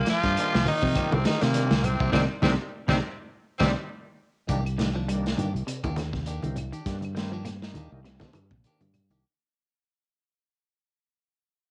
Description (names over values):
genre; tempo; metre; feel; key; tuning
afrobeat; 102 BPM; 4/4; swing 56% on 16ths; C minor; A4 = 439 Hz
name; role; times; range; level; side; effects
raspy tenor saxophone; melody; 0.0-3.7 s; Bb3 to F4; -31 LUFS; equal; cassette tape
trombone with straight mute; second line; 0.0-3.7 s; Bb2 to F3; -36 LUFS; equal; cassette tape
fingered electric bass; bass; 0.0-9.2 s; Bb1 to C3; -31 LUFS; equal; none
semi-hollow electric guitar; arpeggios; 0.1-9.2 s; C3 to Bb3; -35 LUFS; equal; analog chorus, cassette tape
crunchy breakbeat drum kit; drums; 0.1-9.2 s; hi-hat, kick drum, snare drum; -32 LUFS; equal; cassette tape
clean electric guitar; stabs; 0.2-9.2 s; Eb3 to G4; -41 LUFS; equal; none
bright tonewheel organ; accompaniment; 0.4-8.0 s; Eb3 to F4; -40 LUFS; equal; slow rotary speaker, cassette tape
claves; percussion; 0.4-9.1 s; none; -44 LUFS; equal; none
congas; percussion; 0.7-9.1 s; none; -33 LUFS; equal; none
room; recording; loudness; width
light reverb, studio reverb; home recording on cassette; -26 LUFS; mono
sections
0.0-4.5 A section; 4.5-9.2 B section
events
band accent 2.1-4.5; fade-out 4.5-9.2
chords
0.0 Cm7; 4.5 Cm9